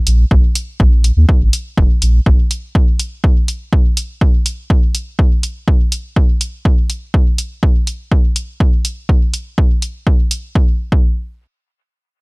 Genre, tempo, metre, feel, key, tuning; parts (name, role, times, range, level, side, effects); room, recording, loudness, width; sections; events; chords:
dub techno; 123 BPM; 4/4; straight; A4 = 440 Hz
soft dub sub bass; bass; 0.1-2.4 s; F1 to Eb2; -12 LUFS; equal; sidechain pumping
electronic hi-hat; drums; 0.1-10.4 s; -22 LUFS; right 1 dB
electronic kick drum; drums; 0.3-11.1 s; -12 LUFS; equal
little or no reverb; -12 LUFS; side -33 dB against mid
0.0-10.6 A section; 10.6-12.2 B section